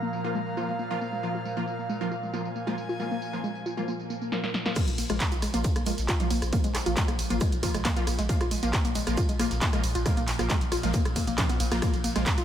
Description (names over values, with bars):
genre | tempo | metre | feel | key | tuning
driving peak-time techno | 136 BPM | 4/4 | straight | unclear | A4 = 440 Hz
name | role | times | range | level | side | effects
warbly dusty pluck | riff | 0.0-12.4 s | Ab3 to F4 | -33 LUFS | left 1 dB | chorus, tube saturation, vintage 12-bit sampler grit, sidechain pumping, tape echo
overtone-sweeping drone | drone | 0.0-12.4 s | Bb2 to F3 | -38 LUFS | right 1 dB | chorus, built-in reverb, sidechain pumping
punchy analog drum machine | drums | 0.0-12.4 s | crash cymbal, handclaps, hi-hat, ride cymbal, rim click, snare drum, tambourine | -32 LUFS | right 1 dB | sidechain pumping on hats, low-pass filter on hats, sidechain pumping on cymbals, low-pass filter on cymbals, sidechain pumping on perc, low-pass filter on perc, low-pass filter on snare, sidechain pumping on toms, low-pass filter on toms, low-pass filter on room
airy breathy pad | texture | 0.0-4.3 s | Bb4 to Bb5 | -35 LUFS | right 2 dB | chorus, sidechain pumping
rave stab | stabs | 0.2-12.2 s | F3 to F4 | -34 LUFS | equal | chorus, built-in reverb, sidechain pumping, ping-pong delay
swell | sound effects | 4.0-4.8 s | none | -40 LUFS | right 1 dB | none
damped 70s drum kit | drums | 4.8-12.4 s | hi-hat, shaker, snare drum | -45 LUFS | right 2 dB | none
electronic kick drum | drums | 4.8-12.4 s | none | -27 LUFS | equal | none
warm sub bass | bass | 4.9-12.4 s | Bb1 | -32 LUFS | equal | overdrive, sidechain pumping, low-pass filter
room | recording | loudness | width
light reverb, digital ambience | none | -25 LUFS | side -10 dB against mid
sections
0.0-4.8 A section; 4.8-12.4 B section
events
filter sweep on synth arpeggio sound 0.0-4.8; swell 4.0-4.8; drum fill 4.3-4.8; drop 4.8-12.4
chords
0.0 Bb5